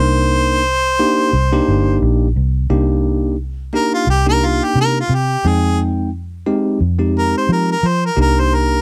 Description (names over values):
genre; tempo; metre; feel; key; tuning
straight-eighth soul blues; 88 BPM; 4/4; swing 55% on 16ths; C minor; A4 = 440 Hz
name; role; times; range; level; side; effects
clear harmonica; melody; 0.0-8.8 s; F4 to C5; -20 LUFS; equal; none
bell-like tine electric piano; accompaniment; 0.0-8.8 s; Ab3 to G5; -20 LUFS; equal; none
vintage muted fingered electric bass; bass; 0.0-8.8 s; G1 to F3; -19 LUFS; equal; none
room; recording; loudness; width
little or no reverb; dry, close 1970s-style studio recording; -16 LUFS; mono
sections
0.0-2.7 A section; 2.7-8.8 A section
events
harmonica solo 0.0-2.7, 2.7-8.8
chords
0.0 Cm7; 5.4 Fm7; 8.2 Cm7